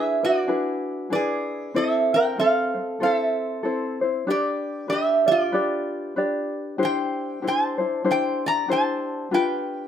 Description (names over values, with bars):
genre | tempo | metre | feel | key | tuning
hawaiian | 95 BPM | 4/4 | swing 59% on 8ths | unclear | A4 = 441 Hz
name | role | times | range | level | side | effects
metal-body resonator slide guitar | melody | 0.0-9.9 s | F4 to Bb5 | -23 LUFS | right 2 dB | plate reverb
tenor ukulele | accompaniment | 0.0-9.9 s | C4 to D5 | -25 LUFS | left 3 dB | none
room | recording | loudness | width
moderate small room reverb, RT60 0.5 s | none | -21 LUFS | side -9 dB against mid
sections
0.0-9.9 A section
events
none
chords
0.0 E7; 1.8 Am; 4.3 G; 6.8 Cadd9; 9.3 G7